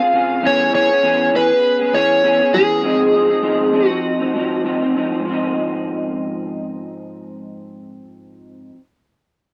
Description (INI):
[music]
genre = indie pop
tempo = 100 BPM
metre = 4/4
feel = swing 55% on 16ths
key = Ab major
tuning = A4 = 440 Hz
[part]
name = overdriven slide guitar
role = melody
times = 0.0-4.6 s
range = G#4 to F5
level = -17 LUFS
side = equal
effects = analog chorus
[part]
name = electric guitar through a small old amp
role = accompaniment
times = 0.0-8.8 s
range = Ab2 to Ab4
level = -22 LUFS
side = equal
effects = analog chorus, warbly pitch drift
[sound]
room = light reverb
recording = dry, close 1970s-style studio recording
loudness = -17 LUFS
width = mono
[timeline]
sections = 0.0-5.2 A section; 5.2-7.7 B section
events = none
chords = 0.4 E6; 2.8 Ab6